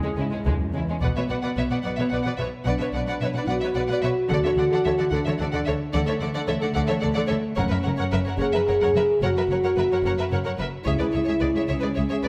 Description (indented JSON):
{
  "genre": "cinematic, epic orchestral film score",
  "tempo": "73 BPM (dotted quarters)",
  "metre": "6/8",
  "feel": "straight",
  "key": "B dorian",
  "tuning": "A4 = 440 Hz",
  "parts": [
    { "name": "warm symphonic violin section", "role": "second line", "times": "0.0-12.3 s", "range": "G#3 to D5", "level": "-35 LUFS", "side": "equal", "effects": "none" },
    { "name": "warm symphonic viola section", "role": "accompaniment", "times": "0.0-12.3 s", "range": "G#3 to B4", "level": "-34 LUFS", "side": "equal", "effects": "none" },
    { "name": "dark French horn section", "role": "sustained chords", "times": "0.0-12.3 s", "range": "G#3 to G#4", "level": "-27 LUFS", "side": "equal", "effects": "none" },
    { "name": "warm symphonic cello section", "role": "bass", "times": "0.0-12.3 s", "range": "C#2 to D3", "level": "-31 LUFS", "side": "equal", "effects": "none" },
    { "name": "rich symphonic violin section", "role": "melody", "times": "0.1-12.3 s", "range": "G#3 to F#5", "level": "-36 LUFS", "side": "equal", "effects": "none" },
    { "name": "rich symphonic double bass section", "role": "bass", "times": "0.2-12.3 s", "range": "F#1 to D2", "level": "-32 LUFS", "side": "equal", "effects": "none" },
    { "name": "taiko ensemble", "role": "drums", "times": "0.5-11.9 s", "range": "none", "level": "-34 LUFS", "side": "equal", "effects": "none" }
  ],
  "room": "wet recital hall reverb, RT60 1.4 s",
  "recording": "none",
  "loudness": "-24 LUFS",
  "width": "mono",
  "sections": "0.0-1.0 A section; 1.0-12.3 B section",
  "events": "none",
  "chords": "0.0 C#m; 1.0 Bm; 4.3 D; 7.6 F#; 10.9 C#m"
}